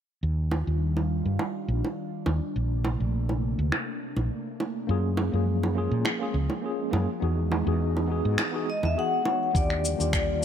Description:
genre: sunset chillout.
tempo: 103 BPM.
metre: 4/4.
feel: straight.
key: unclear.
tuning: A4 = 440 Hz.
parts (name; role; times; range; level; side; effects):
airy breathy pad; sustained chords; 0.2-10.4 s; C3 to F4; -34 LUFS; equal; chorus, phaser.
woody fretless electric bass; bass; 0.2-10.4 s; Bb1 to Bb2; -26 LUFS; equal; none.
bongos; percussion; 0.5-9.4 s; none; -34 LUFS; right 2 dB; none.
electronic finger snaps and shaker; drums; 1.4-10.4 s; none; -31 LUFS; equal; low-pass filter on snare, low-pass filter on perc, low-pass filter on room.
tine electric piano; accompaniment; 4.9-10.4 s; Bb3 to Db5; -30 LUFS; equal; overdrive, medium stereo tremolo, auto-pan, ping-pong delay.
vibraphone with medium mallets; melody; 8.7-10.4 s; D5 to F#5; -27 LUFS; left 4 dB; ping-pong delay.
electronic kick drum; drums; 9.5-10.3 s; none; -27 LUFS; equal; none.
room: light reverb.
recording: none.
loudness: -24 LUFS.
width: side -9 dB against mid.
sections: 0.2-9.6 A section.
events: filter sweep on drum 0.2-9.6; filter sweep on analog synth pad 0.2-9.6.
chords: 0.2 Ebmaj9; 2.6 Bbmaj9; 4.9 Gbmaj9; 7.2 Emaj9; 9.6 Ebmaj9.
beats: | 0.23 0.81 1.40 1.98 | 2.56 3.14 3.73 4.31 | 4.89 5.47 6.05 6.64 | 7.22 7.80 8.38 8.97 | 9.55 10.13.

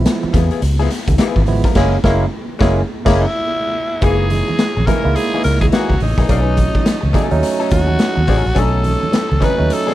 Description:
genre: funk.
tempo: 106 BPM.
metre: 4/4.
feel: swing 60% on 16ths.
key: unclear.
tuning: A4 = 440 Hz.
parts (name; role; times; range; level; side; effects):
barky tine electric piano; stabs; 0.0-9.9 s; F3 to E4; -20 LUFS; right 5 dB; none.
vintage muted fingered electric bass; bass; 0.0-9.7 s; Gb1 to E2; -16 LUFS; equal; none.
archtop guitar, miked and amplified; accompaniment; 0.1-9.9 s; Fb3 to Cb5; -22 LUFS; left 8 dB; wah.
raw garage drum kit; drums; 0.1-9.9 s; crash cymbal, hi-hat, kick drum, snare drum; -18 LUFS; equal; none.
congas; percussion; 0.1-9.9 s; none; -24 LUFS; right 4 dB; none.
raspy alto saxophone; melody; 3.2-9.9 s; Eb4 to Cb5; -20 LUFS; equal; none.
bright tonewheel organ; sustained chords; 4.0-9.9 s; Db5 to Fb6; -32 LUFS; equal; slow rotary speaker, overdrive.
room: light reverb.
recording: none.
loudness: -13 LUFS.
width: side -14 dB against mid.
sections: 0.0-4.0 A section; 4.0-9.9 B section.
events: band accent 1.8-4.0.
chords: 0.0 Db7#9; 1.8 Gb9; 4.0 Gb13; 6.3 Cb9.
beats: 0.06 0.62 1.19 | 1.76 2.32 2.89 3.46 | 4.02 4.59 5.16 5.73 | 6.30 6.86 7.43 8.00 | 8.57 9.14 9.71.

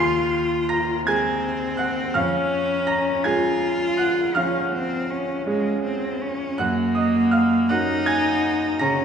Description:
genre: classical, romantic duo for cello and grand piano.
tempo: 54 BPM (dotted quarters).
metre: 12/8.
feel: rubato.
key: Db major.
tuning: A4 = 439 Hz.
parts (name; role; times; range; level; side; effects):
clear cello; melody; 0.0-9.0 s; Ab3 to F4; -22 LUFS; left 1 dB; none.
bright grand piano; accompaniment; 0.0-9.0 s; Eb2 to C7; -23 LUFS; right 2 dB; none.
room: wet recital hall reverb, RT60 1.3 s.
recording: heard from further back in the room.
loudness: -19 LUFS.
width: side -7 dB against mid.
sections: 0.0-9.0 A section.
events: none.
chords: 0.0 Ab7/Eb; 2.2 Db/F; 6.6 Gb.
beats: 1.06 | 2.15 3.26 4.36 5.47 | 6.58 7.70 8.81.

